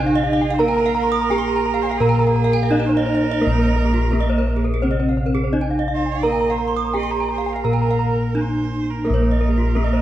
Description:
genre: Balinese gamelan.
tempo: 85 BPM.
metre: 4/4.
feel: straight.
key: Bb slendro.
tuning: A4 = 440 Hz.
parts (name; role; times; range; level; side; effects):
gamelan-type bronze metallophone; melody; 0.0-10.0 s; Bb3 to Bb4; -21 LUFS; right 1 dB; none.
rich erhu; second line; 0.0-10.0 s; F4+27c to Eb5-34c; -29 LUFS; right 4 dB; none.
gamelan-type bronze metallophone; accompaniment; 0.0-10.0 s; C3+30c to Bb3; -27 LUFS; right 3 dB; none.
gamelan-type bronze metallophone; arpeggios; 0.0-9.9 s; F4+25c to Eb6-35c; -27 LUFS; right 6 dB; none.
gamelan-type bossed gongs; bass; 0.0-10.0 s; Bb1 to Bb4; -21 LUFS; equal; none.
gamelan-type bronze metallophone; arpeggios; 0.1-10.0 s; Ab4-45c to Bb5; -26 LUFS; left 2 dB; none.
room: moderate recital hall reverb, RT60 1.7 s.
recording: none.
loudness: -17 LUFS.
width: side -12 dB against mid.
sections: 0.0-10.0 A section.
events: none.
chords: none.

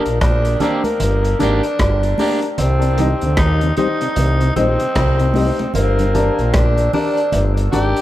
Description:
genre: dub reggae.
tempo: 76 BPM.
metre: 4/4.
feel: swing 60% on 16ths.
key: C minor.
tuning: A4 = 440 Hz.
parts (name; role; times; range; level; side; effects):
raspy tenor saxophone; melody; 0.0-8.0 s; Bb3 to G4; -20 LUFS; equal; dub echo.
electric guitar at the edge of break-up; accompaniment; 0.0-2.5 s; Bb3 to G4; -27 LUFS; right 5 dB; dub echo.
warm upright piano; stabs; 0.0-8.0 s; D4 to Eb5; -22 LUFS; left 2 dB; dub echo.
growling FM bass; bass; 0.1-7.9 s; G1 to Eb2; -17 LUFS; equal; none.
crunchy breakbeat drum kit; drums; 0.1-8.0 s; hi-hat, kick drum, rim click; -22 LUFS; equal; none.
congas; percussion; 0.2-8.0 s; none; -28 LUFS; right 4 dB; dub echo.
mellow tonewheel organ; accompaniment; 2.8-6.1 s; G2 to Eb4; -26 LUFS; left 3 dB; none.
room: light reverb, studio reverb.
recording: echo-heavy mix.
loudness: -14 LUFS.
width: side -14 dB against mid.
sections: 0.0-8.0 A section.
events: break 0.0-2.6.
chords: 0.0 Gm; 2.6 Cm; 5.8 Gm.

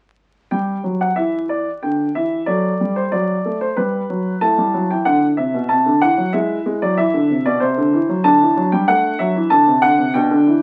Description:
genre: classical-period piano sonatina.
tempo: 93 BPM.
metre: 3/4.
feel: rubato.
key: G major.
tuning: A4 = 440 Hz.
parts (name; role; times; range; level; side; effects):
clear baby grand piano; solo; 0.5-10.6 s; B2 to A5; -17 LUFS; equal; none.
room: moderate studio reverb, RT60 0.6 s.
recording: very old 78 rpm record, vinyl crackle.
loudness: -17 LUFS.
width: mono.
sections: 0.5-10.6 A section.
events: none.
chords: 0.5 G5; 2.5 Dadd11/F#; 3.8 G; 4.4 Am; 6.3 E7; 7.6 Cadd9; 8.3 D7.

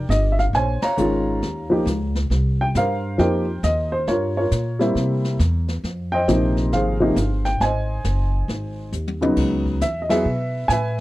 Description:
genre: jazz piano trio.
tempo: 136 BPM.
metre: 4/4.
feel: swing 65% on 8ths.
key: unclear.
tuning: A4 = 443 Hz.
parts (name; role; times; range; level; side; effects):
dark baby grand piano; melody; 0.0-11.0 s; C3 to Bb5; -21 LUFS; equal; none.
upright bass; bass; 0.0-11.0 s; Gb1 to C3; -22 LUFS; equal; none.
jazz brush drum kit; drums; 0.1-11.0 s; brushed snare drum, crash cymbal, hi-hat, kick drum, ride cymbal, snare drum, toms; -30 LUFS; equal; none.
room: studio ambience.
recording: dry, close 1970s-style studio recording.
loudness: -18 LUFS.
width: side -17 dB against mid.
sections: 0.0-9.4 A section; 9.4-11.0 B section.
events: band accent 0.8, 10.0; drum fill 8.9-9.4.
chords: 0.0 Ebmaj7; 0.5 Bbm9; 1.4 Eb7sus2; 2.3 Eb69/C; 4.1 Gm7b5; 5.0 C7; 5.8 Fm9; 7.6 Ab7; 9.4 C#m9.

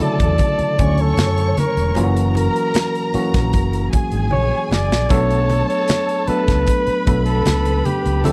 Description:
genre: lush 1970s-style soul.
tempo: 76 BPM.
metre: 4/4.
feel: straight.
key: unclear.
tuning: A4 = 440 Hz.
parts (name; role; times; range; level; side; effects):
warm flugelhorn; melody; 0.0-8.3 s; G4 to D5; -23 LUFS; equal; none.
dark studio string section; second line; 0.0-8.3 s; G#4 to C#6; -28 LUFS; equal; none.
tine electric piano; accompaniment; 0.0-8.3 s; C#3 to G#5; -24 LUFS; equal; none.
overdriven fingered electric bass; bass; 0.0-8.3 s; E1 to F#2; -22 LUFS; equal; none.
modern studio drum kit; drums; 0.2-8.3 s; hi-hat, kick drum, snare drum; -22 LUFS; equal; none.
congas; percussion; 0.4-8.3 s; none; -28 LUFS; equal; none.
room: little or no reverb.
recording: dry, close 1970s-style studio recording.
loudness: -18 LUFS.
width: mono.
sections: 0.0-8.3 A section.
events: drum fill 4.3-5.1.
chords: 0.0 Dmaj7; 2.0 F#7; 5.1 Bm7.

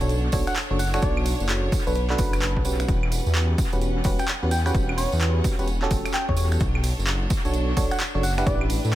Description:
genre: UK garage, two-step garage.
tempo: 129 BPM.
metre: 4/4.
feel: swing 63% on 16ths.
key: unclear.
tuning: A4 = 438 Hz.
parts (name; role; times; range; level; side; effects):
bright studio violin section; sustained chords; 0.0-8.9 s; G3 to F#5; -36 LUFS; right 1 dB; sidechain pumping.
FM electric piano; stabs; 0.0-8.9 s; C#4 to C#5; -29 LUFS; right 2 dB; chorus, analog delay.
dark detuned saw bass; bass; 0.0-8.9 s; E1 to A2; -24 LUFS; equal; none.
punchy analog drum machine; drums; 0.0-8.8 s; claves, finger snaps, handclaps, hi-hat; -31 LUFS; right 1 dB; overdrive, dub echo.
tambourine; percussion; 0.0-8.9 s; none; -38 LUFS; right 6 dB; none.
electronic kick drum; drums; 0.3-8.6 s; none; -26 LUFS; equal; overdrive.
soft struck synth lead; melody; 0.5-8.6 s; B4 to G5; -32 LUFS; equal; chorus, dub echo.
room: little or no reverb.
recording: echo-heavy mix.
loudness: -21 LUFS.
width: side -14 dB against mid.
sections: 0.0-8.9 A section.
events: none.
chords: 0.0 Bm9; 2.9 Em69; 6.6 Bm9.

